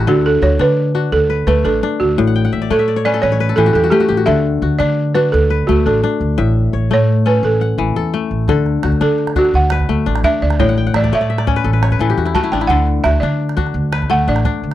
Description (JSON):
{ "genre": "west african traditional, West African string and xylophone music", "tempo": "114 BPM (dotted quarters)", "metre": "12/8", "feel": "straight", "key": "D major", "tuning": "A4 = 440 Hz", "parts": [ { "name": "kora", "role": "arpeggios", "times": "0.0-14.7 s", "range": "A2 to G5", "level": "-18 LUFS", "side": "left 7 dB", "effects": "none" }, { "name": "upright bass", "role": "bass", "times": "0.0-14.7 s", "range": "A1 to D3", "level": "-17 LUFS", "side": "right 1 dB", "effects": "none" }, { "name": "balafon", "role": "melody", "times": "0.1-14.7 s", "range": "F#4 to A5", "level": "-16 LUFS", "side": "right 3 dB", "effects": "none" }, { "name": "calabash", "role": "percussion", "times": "8.5-14.7 s", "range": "none", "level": "-22 LUFS", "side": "right 3 dB", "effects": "none" } ], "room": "little or no reverb", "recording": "dry, close 1970s-style studio recording", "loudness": "-12 LUFS", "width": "side -13 dB against mid", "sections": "0.1-14.7 A section", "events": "balafon solo 0.1-14.7; kora fill 2.3-4.3, 10.6-12.7", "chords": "0.1 D; 2.2 A; 4.3 D; 6.4 A; 8.5 D; 10.6 A; 12.7 D" }